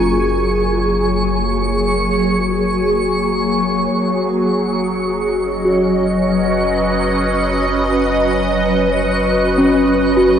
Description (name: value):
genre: ambient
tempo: free time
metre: none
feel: none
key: unclear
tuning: A4 = 440 Hz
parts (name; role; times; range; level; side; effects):
- evolving wavetable pad; sustained chords; 0.0-10.4 s; F#3 to G#5; -16 LUFS; equal; ensemble chorus, built-in reverb, phaser, shimmer reverb
- small celesta; arpeggios; 0.0-10.4 s; C#4 to G#5; -18 LUFS; equal; tape echo, shimmer reverb
- warm sub bass; bass; 0.0-10.4 s; F#1; -26 LUFS; equal; none
- twinkling granular texture; texture; 0.0-10.4 s; C#6; -24 LUFS; right 1 dB; built-in reverb, shimmer reverb
room: wet lush hall reverb, RT60 3.1 s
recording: dark, warm production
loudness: -14 LUFS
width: side -8 dB against mid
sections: 0.0-10.4 A section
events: none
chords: 0.0 F#maj9; 3.9 Badd9/F#